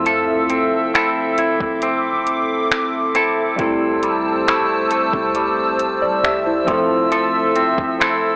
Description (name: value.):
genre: contemporary R&B.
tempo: 68 BPM.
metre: 4/4.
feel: straight.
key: unclear.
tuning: A4 = 441 Hz.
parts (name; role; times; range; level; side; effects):
warm analog keys; accompaniment; 0.0-8.4 s; F3 to E5; -24 LUFS; equal; chorus.
hollow soft pad; sustained chords; 0.0-8.4 s; A4 to E6; -23 LUFS; equal; chorus.
clean electric guitar; arpeggios; 0.0-8.4 s; C3 to A4; -22 LUFS; equal; tape echo.
clean 808-style bass; bass; 0.0-8.2 s; F1 to G3; -43 LUFS; equal; none.
smooth R&B drum kit; drums; 0.1-8.2 s; finger snaps, hi-hat, kick drum; -24 LUFS; equal; none.
room: light reverb, digital ambience.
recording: dry, gritty hardware recording, AM radio sound.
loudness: -18 LUFS.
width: mono.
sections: 0.0-8.4 A section.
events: none.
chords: 0.0 Fmaj7; 3.6 C6; 6.7 Fmaj7.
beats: | 0.06 0.94 1.82 2.71 | 3.59 4.47 5.35 6.24 | 7.12 8.00.